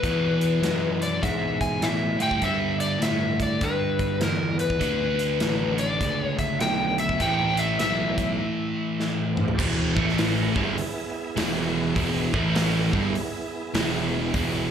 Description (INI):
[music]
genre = blues rock power trio and southern rock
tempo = 101 BPM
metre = 4/4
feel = swing 64% on 8ths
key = unclear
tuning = A4 = 440 Hz
[part]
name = overdriven slide guitar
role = melody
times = 0.0-9.3 s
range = A#4 to G#5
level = -26 LUFS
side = left 3 dB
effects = slapback echo
[part]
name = sludgy distorted guitar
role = riff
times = 0.0-14.7 s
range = E2 to D4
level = -26 LUFS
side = right 1 dB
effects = overdrive
[part]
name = fuzz picked electric bass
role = bass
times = 0.0-14.7 s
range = E1 to A2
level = -28 LUFS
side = right 1 dB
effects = overdrive
[part]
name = big rock drum kit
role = drums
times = 0.0-14.5 s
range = crash cymbal, hi-hat, kick drum, snare drum, toms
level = -29 LUFS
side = equal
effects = none
[part]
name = overdriven tonewheel organ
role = sustained chords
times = 9.3-14.7 s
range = A3 to E5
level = -33 LUFS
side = right 5 dB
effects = chorus vibrato, fast rotary speaker
[sound]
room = light reverb, small room ambience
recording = live gig heard through the venue's PA, club reverb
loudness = -22 LUFS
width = side -8 dB against mid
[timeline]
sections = 0.0-9.6 A section; 9.6-14.7 B section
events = break 8.4-9.6; drum fill 9.0-9.6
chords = 0.0 E; 2.1 G; 4.8 D5; 7.2 A5; 9.6 E5; 9.9 A5; 10.5 E; 12.3 A5; 12.9 E